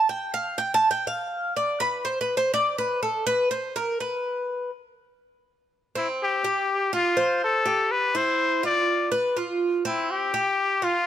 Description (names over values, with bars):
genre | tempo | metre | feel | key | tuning
latin | 123 BPM | 4/4 | straight | C major | A4 = 440 Hz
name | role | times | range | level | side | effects
Cuban tres | arpeggios | 0.0-11.1 s | C4 to A5 | -24 LUFS | right 1 dB | none
trumpet with straight mute | melody | 6.0-11.1 s | E4 to D5 | -23 LUFS | left 3 dB | none
room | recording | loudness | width
light reverb | none | -22 LUFS | side -10 dB against mid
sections
0.0-6.0 A section; 6.0-11.1 B section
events
Cuban tres solo 0.0-6.0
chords
0.0 N.C.; 6.0 C5; 6.9 Fadd9; 7.9 C; 8.9 Bdim/F; 9.9 C5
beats
| 0.10 0.59 1.07 1.56 | 2.05 2.54 3.03 3.52 | 4.00 4.49 4.98 5.47 | 5.96 6.44 6.93 7.42 | 7.91 8.39 8.88 9.37 | 9.86 10.34 10.83